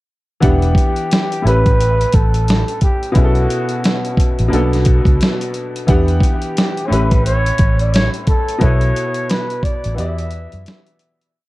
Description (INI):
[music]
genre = lo-fi hip hop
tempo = 88 BPM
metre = 4/4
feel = swing 62% on 16ths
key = E dorian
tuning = A4 = 440 Hz
[part]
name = bright upright piano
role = accompaniment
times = 0.4-11.4 s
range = A2 to F#5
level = -20 LUFS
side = left 1 dB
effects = cassette tape, dub echo
[part]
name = vintage muted fingered electric bass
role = bass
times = 0.4-10.6 s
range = E1 to F#2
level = -16 LUFS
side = equal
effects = none
[part]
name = dusty soul sampler-style drum kit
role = drums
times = 0.4-11.3 s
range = hi-hat, kick drum, snare drum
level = -15 LUFS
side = equal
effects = none
[part]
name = breathy flugelhorn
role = melody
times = 0.5-11.0 s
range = F4 to E5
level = -22 LUFS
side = right 1 dB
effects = dub echo
[sound]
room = light reverb, digital ambience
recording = echo-heavy mix, cassette tape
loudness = -13 LUFS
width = side -18 dB against mid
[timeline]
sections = 0.4-11.3 A section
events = fade-out 8.6-11.3; break 10.0-11.3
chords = 0.4 Em7; 1.4 A7; 3.2 B7sus4; 4.5 Bm7; 5.9 Em7; 6.9 A7; 8.6 B7sus4; 10.0 Em7